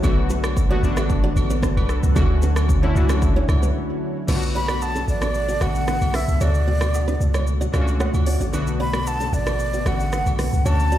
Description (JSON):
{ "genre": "afrobeats", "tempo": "113 BPM", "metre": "4/4", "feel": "straight", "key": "B minor", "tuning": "A4 = 440 Hz", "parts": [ { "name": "warm analog keys", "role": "accompaniment", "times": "0.0-11.0 s", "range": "C#3 to F#5", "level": "-27 LUFS", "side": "left 2 dB", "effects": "chorus" }, { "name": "ethereal airy pad", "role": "sustained chords", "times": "0.0-11.0 s", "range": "B2 to C#5", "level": "-30 LUFS", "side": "equal", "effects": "ensemble chorus, built-in reverb, sidechain pumping" }, { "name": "nylon-string guitar", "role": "riff", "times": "0.0-11.0 s", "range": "C#4 to E5", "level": "-30 LUFS", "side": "right 4 dB", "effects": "ping-pong delay" }, { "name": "warm 808-style bass", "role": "bass", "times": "0.0-11.0 s", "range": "A1 to D2", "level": "-21 LUFS", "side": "equal", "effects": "none" }, { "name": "afro-pop drum kit", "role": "drums", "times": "0.0-11.0 s", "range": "crash cymbal, hi-hat, kick drum, rim click, shaker", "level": "-24 LUFS", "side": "equal", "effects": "none" }, { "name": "agogo bells and woodblock", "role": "percussion", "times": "0.0-10.8 s", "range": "none", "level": "-36 LUFS", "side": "right 3 dB", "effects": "none" }, { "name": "breathy mellow silver concert flute", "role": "melody", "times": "4.6-11.0 s", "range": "D5 to B5", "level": "-26 LUFS", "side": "equal", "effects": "ping-pong delay" } ], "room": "little or no reverb", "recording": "played on a big sound system in a bare room, large studio reverb", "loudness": "-18 LUFS", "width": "side -12 dB against mid", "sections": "0.0-4.3 A section; 4.3-11.0 B section", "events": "break 3.8-4.3; kick muted 4.3-11.0; synth keys fill 7.7-8.5", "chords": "0.0 Bm7; 2.2 Dmaj7; 4.3 Bm7; 6.4 Dmaj7; 8.5 Bm7", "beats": "| 0.04 0.57 1.10 1.63 | 2.16 2.69 3.22 3.75 | 4.28 4.82 5.35 5.88 | 6.41 6.94 7.47 8.00 | 8.53 9.06 9.59 10.12 | 10.66" }